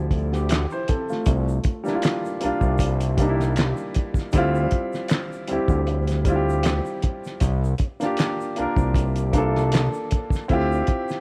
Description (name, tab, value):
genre	R&B, neo-soul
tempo	78 BPM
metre	4/4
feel	swing 54% on 16ths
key	unclear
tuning	A4 = 440 Hz
part	warm baby grand piano	accompaniment	0.0-11.2 s	F3 to C5	-27 LUFS	equal	none
part	fat analog bass	bass	0.0-10.8 s	C2 to D2	-25 LUFS	equal	none
part	cloth-damped thuddy drum kit	drums	0.1-11.2 s	handclaps, hi-hat, kick drum, snare drum	-26 LUFS	equal	none
part	egg shaker and finger snaps	percussion	0.1-11.2 s	none	-44 LUFS	equal	none
room	little or no reverb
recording	worn, warbling old tape, cassette tape, warbly pitch drift, faint mains hum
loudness	-23 LUFS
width	mono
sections	0.0-11.2 A section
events	none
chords	0.0 Dm11; 1.3 C9sus4; 4.3 Dm11; 7.4 C9sus4; 10.5 Dm11